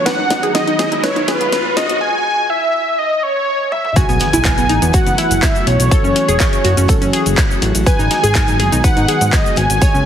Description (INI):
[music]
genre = progressive house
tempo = 123 BPM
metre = 4/4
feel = straight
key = unclear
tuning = A4 = 439 Hz
[part]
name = wide unison lead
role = melody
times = 0.0-10.1 s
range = B4 to G#5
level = -17 LUFS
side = equal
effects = vintage 12-bit sampler grit, sidechain pumping, digital delay
[part]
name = airy breathy pad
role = sustained chords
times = 0.0-10.1 s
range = C#3 to F#4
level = -23 LUFS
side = left 1 dB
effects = chorus, sidechain pumping
[part]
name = fat analog bass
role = bass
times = 0.0-10.0 s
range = E1 to G#2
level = -18 LUFS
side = equal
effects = tube saturation, sidechain pumping, high-pass filter
[part]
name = riser and impact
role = sound effects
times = 0.0-5.9 s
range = none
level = -23 LUFS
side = equal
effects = none
[part]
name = analog pluck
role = arpeggios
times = 0.1-10.0 s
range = B3 to C#5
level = -20 LUFS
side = equal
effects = chorus, sidechain pumping, tape echo
[part]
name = house drum kit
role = drums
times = 0.1-10.0 s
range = handclaps, hi-hat, shaker, snare drum, toms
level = -21 LUFS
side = left 1 dB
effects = sidechain pumping on hats, sidechain pumping on toms, sidechain pumping on perc
[part]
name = crunchy breakbeat drum kit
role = drums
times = 4.0-9.9 s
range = hi-hat, snare drum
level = -31 LUFS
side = right 1 dB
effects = none
[part]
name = electronic kick drum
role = drums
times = 4.0-9.9 s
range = none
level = -15 LUFS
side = equal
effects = none
[sound]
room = moderate digital room reverb, RT60 1.3 s, digital ambience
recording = heavily compressed radio sound, multiband compression, high-pass filter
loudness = -12 LUFS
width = side -9 dB against mid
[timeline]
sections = 0.0-4.0 A section; 4.0-10.1 B section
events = build-up 0.0-4.0; drum fill 0.0-2.0, 3.7; riser 0.0-2.0; filter sweep on synth pluck 0.0-4.0; drop 4.0-10.1; impact 4.0-5.9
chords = 0.1 G#m7; 2.0 N.C.; 4.0 B7sus4; 5.9 F#m7; 7.9 G#m7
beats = | 0.06 0.55 1.04 1.52 | 2.01 2.50 2.99 3.48 | 3.96 4.45 4.94 5.43 | 5.91 6.40 6.89 7.38 | 7.87 8.35 8.84 9.33 | 9.82